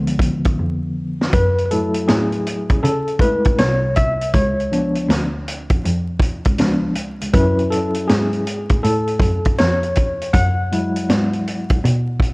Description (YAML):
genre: hip hop, jazz-hop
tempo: 80 BPM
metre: 4/4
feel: swing 65% on 16ths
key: unclear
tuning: A4 = 435 Hz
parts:
  - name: tine electric piano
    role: accompaniment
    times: 0.0-12.3 s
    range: D3 to F#5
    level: -20 LUFS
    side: left 1 dB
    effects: fast tremolo
  - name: dark cello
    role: bass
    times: 0.0-12.3 s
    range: B#1 to C#3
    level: -21 LUFS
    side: equal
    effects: none
  - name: vintage drum kit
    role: drums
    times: 0.1-12.3 s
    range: hi-hat, kick drum, snare drum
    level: -19 LUFS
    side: equal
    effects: vintage 12-bit sampler grit
room: small room ambience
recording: worn, warbling old tape, cassette tape, vinyl crackle, warbly pitch drift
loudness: -16 LUFS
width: side -26 dB against mid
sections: 0.0-1.3 A section; 1.3-12.3 B section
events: tine electric piano solo 0.0-1.3, 1.3-12.3; drum fill 0.6-1.3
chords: 0.0 C#7b9; 1.3 F#m9; 4.3 C#7b9; 7.3 F#m9